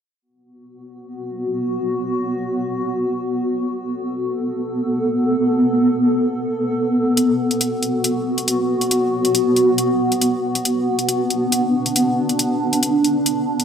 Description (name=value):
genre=deep dubstep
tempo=138 BPM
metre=4/4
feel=swing 55% on 16ths, half-time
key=B minor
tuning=A4 = 441 Hz
part: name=granular cloud pad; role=sustained chords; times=1.2-13.6 s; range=B3 to A4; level=-18 LUFS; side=equal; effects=built-in reverb, wide subtle chorus
part: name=electronic hi-hat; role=drums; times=7.2-13.6 s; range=none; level=-21 LUFS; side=left 2 dB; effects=none
room=wet lush hall reverb, RT60 1.9 s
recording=dreamy mix soaked in reverb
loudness=-17 LUFS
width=side -8 dB against mid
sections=0.2-13.6 A section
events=none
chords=0.2 Bm